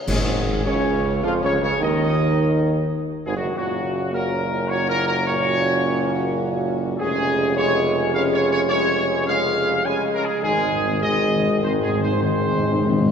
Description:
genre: classical, ceremonial fanfare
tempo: 104 BPM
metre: 3/4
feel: straight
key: Db major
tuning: A4 = 440 Hz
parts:
  - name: mellow trumpet section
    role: melody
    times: 0.0-13.1 s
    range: Gb4 to Ab5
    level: -24 LUFS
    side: equal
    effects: none
  - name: dark trombone section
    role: sustained chords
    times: 0.1-13.1 s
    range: Gb2 to Bb3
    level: -25 LUFS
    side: right 2 dB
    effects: none
  - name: warm French horn section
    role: sustained chords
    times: 0.1-13.0 s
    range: Gb3 to Ab4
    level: -26 LUFS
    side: left 2 dB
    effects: none
  - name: warm tuba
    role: bass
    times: 0.1-13.1 s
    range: F1 to F2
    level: -24 LUFS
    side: right 2 dB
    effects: none
  - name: clash cymbals, concert bass drum and cymbal swell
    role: percussion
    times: 0.1-1.2, 10.4-13.1 s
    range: none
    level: -28 LUFS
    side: left 1 dB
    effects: none
  - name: timpani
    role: percussion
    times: 0.1-0.9, 10.4-13.1 s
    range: Ab2 to Db3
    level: -24 LUFS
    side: left 3 dB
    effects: none
room: wet church reverb, RT60 2.7 s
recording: none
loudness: -18 LUFS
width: side -7 dB against mid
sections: 0.1-13.1 A section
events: band accent 0.1-0.7; timpani fill 10.4-13.1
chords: 0.1 Db/Ab; 1.8 Ebm; 3.6 Gb; 7.0 Db/F; 10.4 Ab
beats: | 0.08 0.67 1.25 | 1.82 2.40 2.98 | 3.55 4.13 4.69 | 5.27 5.84 6.42 | 6.99 7.56 8.13 | 8.71 9.28 9.86 | 10.44 11.03 11.62 | 12.22 12.83

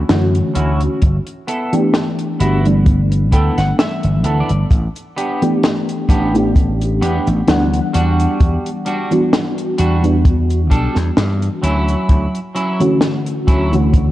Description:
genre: vaporwave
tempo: 65 BPM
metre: 4/4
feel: swing 54% on 16ths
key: D major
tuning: A4 = 440 Hz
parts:
  - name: mellow FM electric piano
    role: accompaniment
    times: 0.0-14.1 s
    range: D3 to F#5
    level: -18 LUFS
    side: equal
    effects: ensemble chorus, cassette tape, analog delay
  - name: vintage slap bass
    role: bass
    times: 0.1-14.1 s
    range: G1 to G2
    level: -16 LUFS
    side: equal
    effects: none
  - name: compact cocktail drum kit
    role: drums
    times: 0.1-14.1 s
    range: cabasa, hi-hat, snare drum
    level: -20 LUFS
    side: left 1 dB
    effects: vintage 12-bit sampler grit
  - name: semi-hollow electric guitar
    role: riff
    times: 0.5-13.7 s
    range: F#3 to G5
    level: -22 LUFS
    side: right 1 dB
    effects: analog chorus, low-pass filter, analog delay
  - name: kick drum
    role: drums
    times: 1.0-14.1 s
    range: none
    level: -12 LUFS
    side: equal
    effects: vintage 12-bit sampler grit
room: light reverb, small room ambience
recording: dark, warm production, cassette tape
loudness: -13 LUFS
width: side -15 dB against mid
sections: 0.0-14.1 A section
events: clean electric guitar fill 2.9-4.7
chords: 0.0 Dmaj9; 1.0 G69; 4.7 A9sus4; 7.9 Em9; 11.6 Dmaj9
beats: 0.10 | 1.02 1.94 2.86 3.79 | 4.71 5.63 6.56 7.48 | 8.40 9.33 10.25 11.17 | 12.10 13.02 13.94

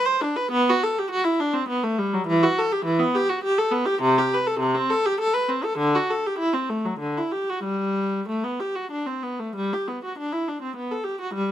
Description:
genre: classical, baroque-style suite movement for unaccompanied viola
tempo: 91-104 BPM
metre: 3/4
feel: rubato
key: G major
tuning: A4 = 442 Hz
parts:
  - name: rich viola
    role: solo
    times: 0.0-11.5 s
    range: C3 to C5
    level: -21 LUFS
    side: equal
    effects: none
room: light reverb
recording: close, detailed microphones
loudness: -21 LUFS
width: side -11 dB against mid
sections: 0.0-9.5 A section; 9.5-11.5 B section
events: none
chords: none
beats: | 0.52 1.11 1.69 | 2.27 2.84 3.42 | 4.01 4.60 5.18 | 5.77 6.37 6.98 | 7.62 8.27 8.90 | 9.55 10.16 10.76 | 11.35

